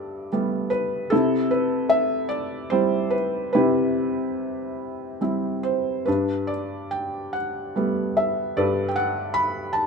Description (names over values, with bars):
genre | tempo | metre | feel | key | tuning
classical, lyrical solo piano | 72 BPM | 3/4 | uneven beats, rubato | G major | A4 = 440 Hz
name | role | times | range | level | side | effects
felt-muted upright piano | solo | 0.0-9.9 s | G2 to B5 | -22 LUFS | equal | none
room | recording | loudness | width
light reverb | minimal, uncompressed stereo recording | -21 LUFS | side -5 dB against mid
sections
0.0-9.9 A section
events
none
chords
0.0 Gadd9; 1.1 Cmaj7; 6.1 Gadd9